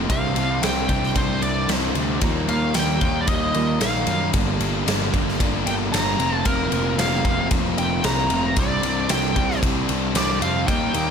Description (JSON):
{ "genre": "quiet-loud alternative rock", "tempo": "113 BPM", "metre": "4/4", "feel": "straight", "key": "unclear", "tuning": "A4 = 440 Hz", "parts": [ { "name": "picked steel-string acoustic guitar", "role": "arpeggios", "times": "0.0-4.3 s", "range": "C3 to C4", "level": "-30 LUFS", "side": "right 4 dB", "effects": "none" }, { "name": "crunchy overdriven guitar", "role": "riff", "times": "0.0-11.1 s", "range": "F2 to Eb4", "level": "-26 LUFS", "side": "left 14 dB", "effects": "none" }, { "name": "thick fuzz guitar", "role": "riff", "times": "0.0-11.1 s", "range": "F2 to Eb4", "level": "-26 LUFS", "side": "right 13 dB", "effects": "distortion" }, { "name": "fuzz picked electric bass", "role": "bass", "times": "0.0-11.1 s", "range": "F1 to F#2", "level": "-26 LUFS", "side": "equal", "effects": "overdrive" }, { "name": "smooth overdriven lead guitar", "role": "melody", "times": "0.1-11.1 s", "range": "Bb4 to Bb5", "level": "-26 LUFS", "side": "equal", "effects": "analog delay" }, { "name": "big rock drum kit", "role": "drums", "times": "0.1-11.1 s", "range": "kick drum, ride cymbal, snare drum", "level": "-24 LUFS", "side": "equal", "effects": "none" } ], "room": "small room ambience", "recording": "none", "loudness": "-19 LUFS", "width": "side -7 dB against mid", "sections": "0.0-11.1 A section", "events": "lead electric guitar solo 0.0-11.1", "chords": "0.1 Csus2; 2.2 Ebadd9; 4.3 Gm; 6.2 Fsus4; 8.6 Csus2" }